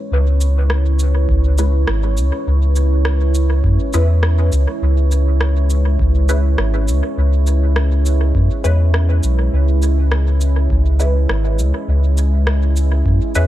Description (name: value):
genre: ambient dub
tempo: 102 BPM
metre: 4/4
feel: swing 54% on 16ths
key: C# minor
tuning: A4 = 440 Hz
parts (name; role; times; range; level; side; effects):
- deep dark ambient pad; sustained chords; 0.0-13.5 s; G#3 to C#5; -23 LUFS; right 2 dB; chorus, built-in reverb
- soft dub sub bass; bass; 0.1-13.5 s; G#1 to F#2; -14 LUFS; equal; tube saturation
- electronic cabasa and rim click; drums; 0.4-13.5 s; none; -26 LUFS; equal; dub echo
- electronic kick drum; drums; 1.3-13.2 s; none; -20 LUFS; equal; overdrive
- filtered dub chord stab; stabs; 1.6-13.5 s; G#3 to B4; -26 LUFS; left 2 dB; phaser, analog chorus, dub echo
room: little or no reverb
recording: echo-heavy mix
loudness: -13 LUFS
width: side -14 dB against mid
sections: 0.1-13.5 A section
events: none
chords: 0.1 C#m7